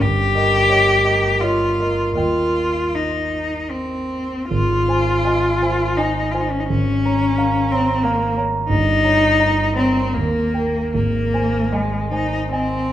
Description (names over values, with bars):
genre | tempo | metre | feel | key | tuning
classical, romantic duo for cello and grand piano | 65-92 BPM | 3/4 | rubato | Ab major | A4 = 440 Hz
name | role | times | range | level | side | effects
rich cello | melody | 0.0-12.9 s | Ab3 to G4 | -18 LUFS | left 1 dB | none
dark concert grand piano | accompaniment | 0.0-12.9 s | G1 to Bb5 | -20 LUFS | right 1 dB | none
room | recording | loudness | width
wet recital hall reverb, RT60 1.8 s | none | -16 LUFS | side -12 dB against mid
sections
0.0-12.9 A section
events
none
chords
0.0 Eb7/G; 2.2 Eb; 4.5 Ab; 6.7 Bbm7/Ab; 8.7 Eb7/G; 10.2 Eb; 10.9 Ab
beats
| 0.01 0.69 1.41 | 2.17 2.95 3.71 | 4.51 5.25 5.97 | 6.69 7.38 8.04 | 8.70 9.40 10.16 | 10.94 11.73 12.53